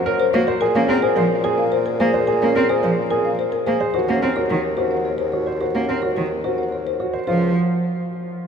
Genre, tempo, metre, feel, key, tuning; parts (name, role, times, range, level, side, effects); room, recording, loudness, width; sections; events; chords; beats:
classical, minimalist pattern music; 108 BPM; 3/4; straight; A4 = 438 Hz
folk marimba with soft mallets; melody; 0.0-7.5 s; Ab4 to Gb5; -23 LUFS; left 7 dB
mellow bassoon; bass; 0.0-7.5 s; Db2 to Bb2; -25 LUFS; left 1 dB
warm concert grand piano; arpeggios; 0.1-7.5 s; Db4 to C5; -22 LUFS; right 5 dB
rich cello; accompaniment; 0.3-7.5 s; Eb3 to C4; -23 LUFS; right 1 dB
wet cathedral reverb, RT60 5.9 s; in a vast, echoing space; -17 LUFS; side -7 dB against mid
0.0-7.3 A section; 7.3-8.5 B section
0.0 Gb; 0.6 Bb7(no3); 3.9 Ebm7; 7.3 Db
0.05 | 0.61 1.16 1.72 | 2.28 2.83 3.39 | 3.94 4.50 5.05 | 5.61 6.16 6.72 | 7.28